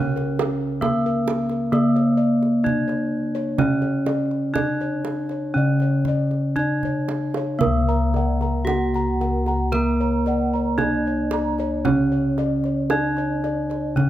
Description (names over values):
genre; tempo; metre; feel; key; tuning
Javanese gamelan; 57-69 BPM; 4/4; straight; unclear; A4 = 438 Hz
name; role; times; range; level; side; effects
gamelan-type bronze metallophone; melody; 0.0-14.1 s; A#3+20c to A#4+20c; -23 LUFS; equal; none
gamelan-type bronze metallophone; accompaniment; 0.0-14.1 s; C#3 to A#3+20c; -25 LUFS; right 2 dB; none
gamelan-type bossed gongs; arpeggios; 0.0-14.0 s; A#4+20c to A#5+20c; -30 LUFS; left 5 dB; none
gamelan-type bossed gongs; bass; 0.0-14.1 s; C#2 to A#4+20c; -26 LUFS; left 2 dB; none
kendang; percussion; 0.2-14.1 s; none; -28 LUFS; right 6 dB; none
gamelan-type bronze metallophone; arpeggios; 7.6-14.1 s; A#4+20c to A#5+20c; -32 LUFS; right 6 dB; none
room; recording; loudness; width
light reverb; close, detailed microphones; -19 LUFS; side -13 dB against mid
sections
0.0-7.6 A section; 7.6-14.1 B section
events
drum fill 6.8-7.6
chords
none